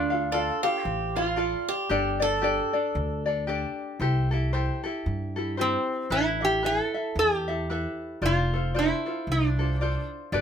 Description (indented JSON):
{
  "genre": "Hawaiian",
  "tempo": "114 BPM",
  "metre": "4/4",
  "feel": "swing 59% on 8ths",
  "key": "unclear",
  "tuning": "A4 = 439 Hz",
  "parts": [
    { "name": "metal-body resonator slide guitar", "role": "melody", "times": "0.0-1.3, 5.6-10.1 s", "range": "C4 to A4", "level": "-27 LUFS", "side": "right 2 dB", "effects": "none" },
    { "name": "tenor ukulele", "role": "accompaniment", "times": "0.0-10.4 s", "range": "D4 to F5", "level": "-29 LUFS", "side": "left 3 dB", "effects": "none" },
    { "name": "upright bass", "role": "bass", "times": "0.0-10.4 s", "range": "F1 to G2", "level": "-29 LUFS", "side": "equal", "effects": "none" },
    { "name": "picked acoustic archtop guitar", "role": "second line", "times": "0.3-3.2 s", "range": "F4 to A4", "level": "-28 LUFS", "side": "right 3 dB", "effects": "none" }
  ],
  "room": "light reverb",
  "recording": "minimal, uncompressed stereo recording",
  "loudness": "-24 LUFS",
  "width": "side -8 dB against mid",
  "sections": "0.0-10.4 A section",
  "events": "none",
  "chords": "0.0 Dm; 1.9 Gsus2; 4.0 C6; 6.1 Asus2; 8.2 F6"
}